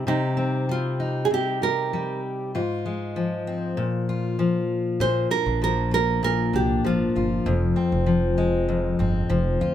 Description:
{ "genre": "acoustic pop", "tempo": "97 BPM", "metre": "4/4", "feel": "straight", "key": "unclear", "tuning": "A4 = 440 Hz", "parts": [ { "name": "fingerpicked steel-string acoustic guitar", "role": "accompaniment", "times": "0.0-9.7 s", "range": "F2 to G4", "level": "-23 LUFS", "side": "left 2 dB", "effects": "none" }, { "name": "nylon-string guitar", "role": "melody", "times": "0.1-7.3 s", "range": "Eb4 to C5", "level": "-24 LUFS", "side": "right 4 dB", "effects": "none" }, { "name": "upright bass", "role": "bass", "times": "5.0-9.7 s", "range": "F1 to D2", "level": "-26 LUFS", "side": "right 1 dB", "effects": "none" } ], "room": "light reverb", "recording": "none", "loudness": "-21 LUFS", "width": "side -11 dB against mid", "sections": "0.0-5.0 A section; 5.0-9.7 B section", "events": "none", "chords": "0.0 Cm; 2.5 Ab6; 3.8 Bb5; 5.0 Bb; 7.5 Fm" }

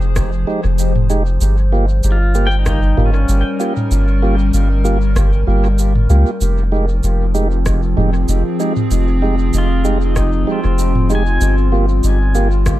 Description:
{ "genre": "ambient dub", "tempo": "96 BPM", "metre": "4/4", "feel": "swing 54% on 16ths", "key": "F minor", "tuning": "A4 = 440 Hz", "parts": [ { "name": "warbly tape-like pad", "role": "sustained chords", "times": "0.0-12.8 s", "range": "F3 to C5", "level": "-22 LUFS", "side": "left 1 dB", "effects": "chorus, built-in reverb, phaser" }, { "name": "soft dub sub bass", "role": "bass", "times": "0.0-12.8 s", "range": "F1 to Db2", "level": "-14 LUFS", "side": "equal", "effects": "none" }, { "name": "electronic kick drum", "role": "drums", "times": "0.2-12.8 s", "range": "none", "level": "-22 LUFS", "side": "equal", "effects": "none" }, { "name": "organic electronic drum kit", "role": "drums", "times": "0.2-12.8 s", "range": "rim click, shaker, toms", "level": "-24 LUFS", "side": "right 1 dB", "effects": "dub echo" }, { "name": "tonewheel organ", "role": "stabs", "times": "0.5-12.5 s", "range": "Ab3 to G4", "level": "-22 LUFS", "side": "right 3 dB", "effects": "overdrive, stopped rotary speaker, dub echo" }, { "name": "pedal steel guitar", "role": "arpeggios", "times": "2.1-5.0, 9.6-12.4 s", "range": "C4 to Ab5", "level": "-23 LUFS", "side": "left 1 dB", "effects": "dub echo" } ], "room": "little or no reverb", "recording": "echo-heavy mix", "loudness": "-13 LUFS", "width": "side -15 dB against mid", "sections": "0.0-12.8 A section", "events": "none", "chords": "0.0 Fm9; 1.4 Gm7b5; 6.4 Fm9; 11.4 Gm7" }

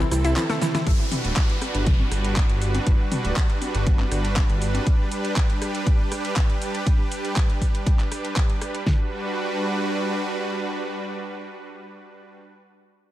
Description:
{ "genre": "progressive house", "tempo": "120 BPM", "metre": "4/4", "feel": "straight", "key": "G major", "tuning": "A4 = 442 Hz", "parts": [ { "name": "supersaw pad", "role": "sustained chords", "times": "0.0-12.4 s", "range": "C3 to B4", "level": "-28 LUFS", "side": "right 1 dB", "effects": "sidechain pumping" }, { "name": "analog pluck", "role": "arpeggios", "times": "0.0-0.8 s", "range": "E3 to E4", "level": "-27 LUFS", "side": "left 1 dB", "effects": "chorus, vintage 12-bit sampler grit, sidechain pumping, tape echo" }, { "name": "dark detuned saw bass", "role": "bass", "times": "0.0-4.8 s", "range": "D1 to C2", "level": "-24 LUFS", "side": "equal", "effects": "sidechain pumping" }, { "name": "pop drum kit", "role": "drums", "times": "0.0-8.8 s", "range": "handclaps, hi-hat, rim click, shaker, snare drum", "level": "-30 LUFS", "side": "equal", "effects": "none" }, { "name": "electronic congas and toms", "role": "percussion", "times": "0.0-4.8 s", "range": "none", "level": "-31 LUFS", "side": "left 2 dB", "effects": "overdrive, sidechain pumping on toms, sidechain pumping on perc" }, { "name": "pop drum kit", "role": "drums", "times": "0.9-9.0 s", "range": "kick drum, snare drum", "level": "-20 LUFS", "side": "equal", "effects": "none" }, { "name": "downlifter", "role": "sound effects", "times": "0.9-4.9 s", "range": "none", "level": "-35 LUFS", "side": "equal", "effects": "none" } ], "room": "light reverb", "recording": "none", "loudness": "-20 LUFS", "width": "side -14 dB against mid", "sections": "0.9-8.9 A section; 8.9-12.9 B section", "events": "break 0.4-0.9; drum fill 0.4-0.9", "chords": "0.0 C6; 0.9 Gmaj7" }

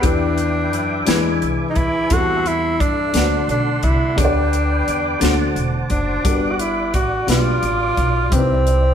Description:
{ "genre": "slow gospel", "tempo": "58 BPM (dotted quarters)", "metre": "6/8", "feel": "straight", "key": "G major", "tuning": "A4 = 440 Hz", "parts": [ { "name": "warm tenor saxophone", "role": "melody", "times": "0.0-8.9 s", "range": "C4 to F#4", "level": "-21 LUFS", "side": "equal", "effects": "none" }, { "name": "warm upright piano", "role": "accompaniment", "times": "0.0-8.9 s", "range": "G2 to D5", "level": "-23 LUFS", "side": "left 3 dB", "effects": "none" }, { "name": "tonewheel organ", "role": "sustained chords", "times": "0.0-8.9 s", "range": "A4 to D6", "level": "-25 LUFS", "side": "right 1 dB", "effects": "fast rotary speaker, chorus vibrato" }, { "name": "upright bass", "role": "bass", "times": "0.0-8.9 s", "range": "E1 to G2", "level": "-22 LUFS", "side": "equal", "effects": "none" }, { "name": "crisp fusion drum kit", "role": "drums", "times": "0.0-8.8 s", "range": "hi-hat, kick drum, snare drum", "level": "-22 LUFS", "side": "equal", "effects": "none" } ], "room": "moderate stone room reverb, RT60 1.4 s", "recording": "band playing live in one room", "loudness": "-16 LUFS", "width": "side -8 dB against mid", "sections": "0.0-8.9 A section", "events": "none", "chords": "0.0 Em7; 1.1 E7; 2.1 Am7/E; 3.1 D7; 4.2 G/D; 5.2 D7; 6.3 Gmaj7; 7.3 G7; 8.3 Cmaj7" }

